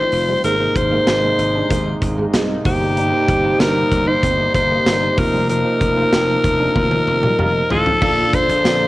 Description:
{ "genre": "1980s-style pop", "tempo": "95 BPM", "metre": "4/4", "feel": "straight", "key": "Bb major", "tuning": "A4 = 437 Hz", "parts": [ { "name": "raspy alto saxophone", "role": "melody", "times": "0.0-8.9 s", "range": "G4 to C5", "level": "-17 LUFS", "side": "left 1 dB", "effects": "cassette tape" }, { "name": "bell-like tine electric piano", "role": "accompaniment", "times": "0.0-8.9 s", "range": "G2 to D5", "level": "-23 LUFS", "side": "right 2 dB", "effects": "cassette tape" }, { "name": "chorused pulse-width pad", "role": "sustained chords", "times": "0.0-8.9 s", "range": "C3 to F4", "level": "-25 LUFS", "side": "equal", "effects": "cassette tape" }, { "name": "glassy slap bass", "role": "bass", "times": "0.0-8.9 s", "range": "F1 to C2", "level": "-24 LUFS", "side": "equal", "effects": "none" }, { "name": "big rock drum kit", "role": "drums", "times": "0.1-8.8 s", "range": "crash cymbal, hi-hat, kick drum, snare drum, tambourine, toms", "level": "-21 LUFS", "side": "equal", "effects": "none" }, { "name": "electric guitar at the edge of break-up", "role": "riff", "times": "0.3-8.8 s", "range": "F3 to Eb4", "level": "-28 LUFS", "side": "right 2 dB", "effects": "none" }, { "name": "clear horn section", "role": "stabs", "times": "7.4-8.1 s", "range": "Bb3 to Bb4", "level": "-28 LUFS", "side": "right 2 dB", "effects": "cassette tape, tape echo" } ], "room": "light reverb, small room ambience", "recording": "home recording on cassette", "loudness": "-14 LUFS", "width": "side -18 dB against mid", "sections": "0.0-8.0 A section", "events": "band accent 5.5-8.0; drum fill 6.8-8.0", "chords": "0.4 Abadd9; 2.7 Eb6/G; 5.2 F7sus4; 8.0 Bbmaj7", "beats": "| 0.44 1.07 1.70 2.33 | 2.97 3.60 4.23 4.86 | 5.49 6.12 6.76 7.39 | 8.02 8.65" }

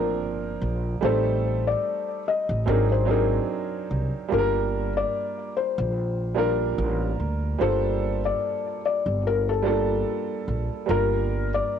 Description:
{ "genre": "lo-fi hip hop", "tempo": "73 BPM", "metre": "4/4", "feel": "swing 55% on 16ths", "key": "G minor", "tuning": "A4 = 441 Hz", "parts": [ { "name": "felt-muted upright piano", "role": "melody", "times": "0.0-11.8 s", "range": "A4 to Eb5", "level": "-26 LUFS", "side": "left 8 dB", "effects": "low-pass filter, plate reverb, tape echo" }, { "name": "clear upright piano", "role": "accompaniment", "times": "0.0-11.8 s", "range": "F3 to Bb4", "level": "-28 LUFS", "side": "right 10 dB", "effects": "low-pass filter, plate reverb" }, { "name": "upright bass", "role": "bass", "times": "0.0-11.6 s", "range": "G1 to D2", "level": "-26 LUFS", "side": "equal", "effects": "none" } ], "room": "moderate booth ambience, RT60 0.2 s", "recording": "home recording on cassette", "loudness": "-22 LUFS", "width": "side -8 dB against mid", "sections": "0.0-10.9 A section", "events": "none", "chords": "0.0 Gm11; 1.0 Am7b5; 2.7 Ab7#11; 4.3 Gm9; 10.9 Gm7", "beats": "0.20 | 1.02 1.84 2.66 3.48 | 4.31 5.13 5.95 6.77 | 7.59 8.42 9.24 10.06 | 10.88 11.70" }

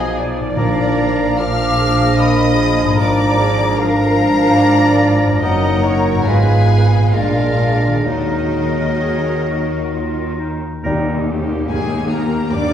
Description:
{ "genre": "classical, slow romantic movement for symphony orchestra", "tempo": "62-77 BPM", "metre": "3/4", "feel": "rubato", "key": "Eb minor", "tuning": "A4 = 441 Hz", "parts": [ { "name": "warm chamber violin section", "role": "melody", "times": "0.0-12.7 s", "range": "Eb5 to F6", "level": "-24 LUFS", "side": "left 4 dB", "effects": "none" }, { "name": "clear oboe", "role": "second line", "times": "0.0-11.2 s", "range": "Ab4 to Cb5", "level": "-27 LUFS", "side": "right 1 dB", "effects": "none" }, { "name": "flute section", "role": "second line", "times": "0.0-12.7 s", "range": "Ab4 to D6", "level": "-24 LUFS", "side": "left 1 dB", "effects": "none" }, { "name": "rich chamber violin section", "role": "second line", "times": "0.0-12.7 s", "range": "Eb4 to F5", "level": "-26 LUFS", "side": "left 1 dB", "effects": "none" }, { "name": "warm clarinet", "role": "second line", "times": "0.0-11.2 s", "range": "D4 to Ab4", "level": "-22 LUFS", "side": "left 1 dB", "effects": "none" }, { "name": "mellow bassoon", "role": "accompaniment", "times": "0.0-11.2 s", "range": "F3 to Ab3", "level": "-23 LUFS", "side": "right 2 dB", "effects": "none" }, { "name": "rich chamber viola section", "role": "accompaniment", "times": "0.0-12.7 s", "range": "Bb3 to Eb5", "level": "-25 LUFS", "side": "right 1 dB", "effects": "none" }, { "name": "mellow French horn section", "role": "sustained chords", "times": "0.0-12.7 s", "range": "F3 to F4", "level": "-23 LUFS", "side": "equal", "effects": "none" }, { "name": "concert harp", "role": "arpeggios", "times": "0.0-12.7 s", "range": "Gb2 to F5", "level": "-24 LUFS", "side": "left 2 dB", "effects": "none" }, { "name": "clear chamber double bass section", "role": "bass", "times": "0.0-12.7 s", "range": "Gb1 to Eb2", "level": "-21 LUFS", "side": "right 2 dB", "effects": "none" }, { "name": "rich studio cello section", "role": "bass", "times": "0.0-12.7 s", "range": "Eb2 to Eb3", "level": "-22 LUFS", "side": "right 2 dB", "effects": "none" }, { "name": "timpani", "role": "percussion", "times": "0.6-1.8 s", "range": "Bb2", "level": "-24 LUFS", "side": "right 1 dB", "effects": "none" }, { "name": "tam-tam", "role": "percussion", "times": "10.9-12.7 s", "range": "none", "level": "-27 LUFS", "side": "left 2 dB", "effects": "none" } ], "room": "wet scoring stage reverb, RT60 1.6 s", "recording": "heard from further back in the room", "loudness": "-13 LUFS", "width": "side -9 dB against mid", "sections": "0.0-10.8 A section; 10.8-12.7 B section", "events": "band accent 10.8-11.7", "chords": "0.0 Fm7b5/Cb; 0.6 Bb; 3.0 Bb7/Ab; 5.4 Ebm/Gb; 6.3 Fdim/Ab; 7.1 Bb7; 8.1 Ebm; 10.8 Eb", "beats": "| 0.59 1.42 2.21 | 3.00 3.81 4.62 | 5.44 6.28 7.14 | 8.05 9.00 9.94 | 10.85 11.70 12.54" }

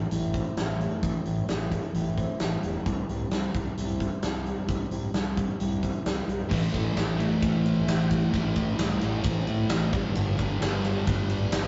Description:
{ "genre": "quiet-loud alternative rock", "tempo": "131 BPM", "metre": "4/4", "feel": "straight", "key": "A minor", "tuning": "A4 = 440 Hz", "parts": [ { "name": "fingerpicked plugged-in acoustic archtop guitar", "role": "arpeggios", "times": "0.0-11.7 s", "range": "G2 to E4", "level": "-37 LUFS", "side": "equal", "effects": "none" }, { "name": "fuzz fingered electric bass", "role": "bass", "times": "0.0-11.7 s", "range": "E1 to A2", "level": "-32 LUFS", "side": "equal", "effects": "overdrive" }, { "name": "big rock drum kit", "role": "drums", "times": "0.1-11.6 s", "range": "crash cymbal, hi-hat, kick drum, ride cymbal, snare drum", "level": "-32 LUFS", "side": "equal", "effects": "none" }, { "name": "thick fuzz guitar", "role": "riff", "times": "6.5-11.7 s", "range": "G2 to A3", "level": "-31 LUFS", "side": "equal", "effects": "distortion" } ], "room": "light reverb", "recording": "rough rehearsal-room recording, nothing above 7.7 kHz", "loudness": "-27 LUFS", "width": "mono", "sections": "0.0-6.5 A section; 6.5-11.7 B section", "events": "none", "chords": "0.0 Am; 2.9 C; 6.5 Am; 9.9 G", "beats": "0.11 0.57 | 1.03 1.49 1.94 2.40 | 2.86 3.31 3.77 4.23 | 4.69 5.14 5.60 6.06 | 6.52 6.97 7.43 7.89 | 8.34 8.80 9.26 9.71 | 10.17 10.62 11.08 11.53" }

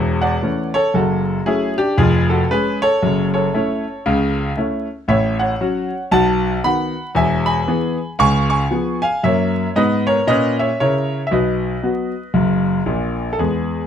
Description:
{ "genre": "jazz, stride piano", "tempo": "116 BPM", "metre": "4/4", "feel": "swing 60% on 8ths", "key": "unclear", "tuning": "A4 = 440 Hz", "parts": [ { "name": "bright grand piano", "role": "solo", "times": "0.0-13.9 s", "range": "E1 to C#6", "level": "-16 LUFS", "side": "equal", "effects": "none" } ], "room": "light reverb", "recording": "close, detailed microphones, vinyl crackle", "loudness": "-16 LUFS", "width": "side -8 dB against mid", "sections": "0.0-13.4 A section", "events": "none", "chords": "0.0 A; 0.9 F#m; 2.0 C#/E#; 3.0 F#m7; 5.1 F#m/A; 6.1 B7; 7.2 E; 8.2 C#7; 9.2 F#7; 11.3 B", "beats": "0.41 | 0.93 1.45 1.97 2.49 | 3.02 3.54 4.05 4.58 | 5.09 5.61 6.13 6.65 | 7.17 7.69 8.21 8.72 | 9.24 9.76 10.28 10.80 | 11.31 11.83 12.35 12.87 | 13.39" }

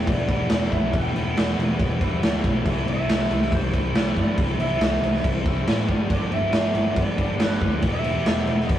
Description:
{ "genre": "garage rock duo or trio", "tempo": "140 BPM", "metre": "4/4", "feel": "straight", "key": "E minor", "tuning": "A4 = 440 Hz", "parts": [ { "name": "electric slide guitar", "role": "melody", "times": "0.0-8.8 s", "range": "B4 to G5", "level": "-29 LUFS", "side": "right 1 dB", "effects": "none" }, { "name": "crunchy overdriven guitar", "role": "riff", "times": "0.0-8.8 s", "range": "E2 to G4", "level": "-29 LUFS", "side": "left 1 dB", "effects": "none" }, { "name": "overdriven picked electric bass", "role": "bass", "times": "0.0-8.8 s", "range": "E1 to A2", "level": "-28 LUFS", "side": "equal", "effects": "none" }, { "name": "raw garage drum kit", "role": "drums", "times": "0.1-8.8 s", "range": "crash cymbal, kick drum, snare drum", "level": "-22 LUFS", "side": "equal", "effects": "none" } ], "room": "light reverb", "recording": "rough rehearsal-room recording", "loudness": "-20 LUFS", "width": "side -11 dB against mid", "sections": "0.0-8.8 A section", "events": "none", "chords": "0.0 Em; 2.7 C; 5.9 G; 7.8 Em", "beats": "0.09 0.52 | 0.95 1.38 1.81 2.24 | 2.67 3.10 3.53 3.96 | 4.39 4.82 5.25 5.68 | 6.11 6.54 6.97 7.40 | 7.83 8.26 8.69" }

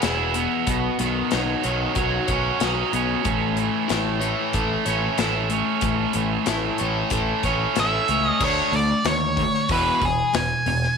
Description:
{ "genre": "classic rock", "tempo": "93 BPM", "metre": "4/4", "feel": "straight", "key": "unclear", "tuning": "A4 = 439 Hz", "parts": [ { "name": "overdriven electric guitar", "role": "riff", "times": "0.0-11.0 s", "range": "E2 to E4", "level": "-24 LUFS", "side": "right 12 dB", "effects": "none" }, { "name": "overdriven semi-hollow guitar", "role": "riff", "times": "0.0-11.0 s", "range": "E2 to C#5", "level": "-26 LUFS", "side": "left 12 dB", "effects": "none" }, { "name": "growling fingered electric bass", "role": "bass", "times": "0.0-10.9 s", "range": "E1 to D#2", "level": "-28 LUFS", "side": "equal", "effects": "overdrive" }, { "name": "big rock drum kit", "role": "drums", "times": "0.0-10.9 s", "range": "crash cymbal, hi-hat, kick drum, snare drum", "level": "-28 LUFS", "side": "left 4 dB", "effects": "none" }, { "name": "octave-fuzz lead guitar", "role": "melody", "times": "7.8-11.0 s", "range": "G#4 to G#5", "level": "-22 LUFS", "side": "equal", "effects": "distortion" } ], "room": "light reverb", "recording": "1960s-style stereo with parts hard left and right", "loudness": "-20 LUFS", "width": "side -6 dB against mid", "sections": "0.0-8.4 A section; 8.4-11.0 B section", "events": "none", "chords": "0.0 E; 0.7 Badd9; 3.3 A; 8.4 D5; 9.7 E", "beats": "0.03 | 0.67 1.32 1.97 2.61 | 3.26 3.90 4.55 5.19 | 5.83 6.48 7.12 7.77 | 8.41 9.05 9.70 10.34" }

